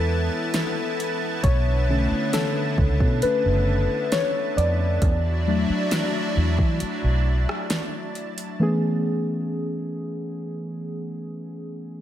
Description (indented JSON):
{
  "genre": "contemporary R&B",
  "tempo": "67 BPM",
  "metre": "4/4",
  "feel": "straight",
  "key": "A major",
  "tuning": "A4 = 440 Hz",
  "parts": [
    { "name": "muted felt-like synth keys", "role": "accompaniment", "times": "0.0-12.0 s", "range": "D3 to D5", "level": "-25 LUFS", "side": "left 2 dB", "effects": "chorus" },
    { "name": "lush unison pad", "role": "sustained chords", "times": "0.0-8.6 s", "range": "D3 to A5", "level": "-28 LUFS", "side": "right 1 dB", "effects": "chorus, sidechain pumping" },
    { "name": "vintage muted fingered electric bass", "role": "bass", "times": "0.0-7.4 s", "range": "F#1 to E3", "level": "-22 LUFS", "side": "equal", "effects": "none" },
    { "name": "smooth R&B drum kit", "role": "drums", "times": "0.5-8.6 s", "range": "hi-hat, kick drum, rim click, snare drum", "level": "-24 LUFS", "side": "equal", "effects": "none" }
  ],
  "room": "digital ambience",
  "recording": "none",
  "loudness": "-21 LUFS",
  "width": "side -11 dB against mid",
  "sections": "0.0-8.6 A section; 8.6-12.0 A section",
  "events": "synth keys solo 0.0-8.6; break 6.8-8.6",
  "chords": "0.0 Amaj9; 1.4 Bm9; 5.0 E9sus4; 8.6 Amaj9",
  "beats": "0.54 | 1.44 2.33 3.23 4.12 | 5.02 5.91 6.81 7.70 | 8.60 9.49 10.39 11.29"
}